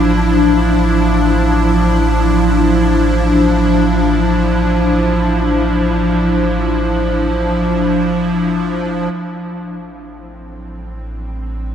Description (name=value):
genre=ambient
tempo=free time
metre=none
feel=none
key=unclear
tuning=A4 = 440 Hz
part: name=evolving wavetable pad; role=sustained chords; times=0.0-11.7 s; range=A2 to E4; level=-14 LUFS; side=equal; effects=ensemble chorus, built-in reverb
part: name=warm sub bass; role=bass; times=0.0-11.7 s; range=A1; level=-18 LUFS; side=equal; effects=none
room=wet cathedral reverb, RT60 5.9 s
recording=in a vast, echoing space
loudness=-12 LUFS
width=side -8 dB against mid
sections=0.0-9.1 A section; 9.1-11.7 B section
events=none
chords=0.0 Dmadd9/A; 9.1 Am7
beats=free time